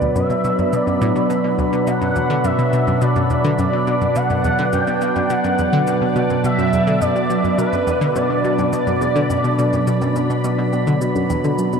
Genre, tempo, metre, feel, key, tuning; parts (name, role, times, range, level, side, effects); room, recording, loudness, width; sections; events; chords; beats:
ambient, sequencer-driven space music; 105 BPM; 4/4; straight; B minor; A4 = 440 Hz
expressive portamento lead; melody; 0.0-10.4 s; B4 to G5; -22 LUFS; equal; ensemble chorus, tape echo
evolving wavetable pad; sustained chords; 0.0-11.8 s; B2 to B5; -18 LUFS; right 1 dB; phaser, built-in reverb
analog pluck; riff; 0.0-11.8 s; D2 to D3; -22 LUFS; left 1 dB; chorus, tape echo
shaker and woodblock; percussion; 0.0-11.8 s; -42 LUFS; right 1 dB; overdrive, tape echo
wet huge ambient reverb, RT60 6.9 s; dreamy mix soaked in reverb; -16 LUFS; side -6 dB against mid
0.0-11.8 A section
fade-in on drum 0.0-11.8
0.0 Bm
0.16 0.73 1.30 | 1.87 2.44 3.01 3.59 | 4.16 4.73 5.30 5.87 | 6.44 7.01 7.59 8.16 | 8.73 9.30 9.87 10.44 | 11.01 11.59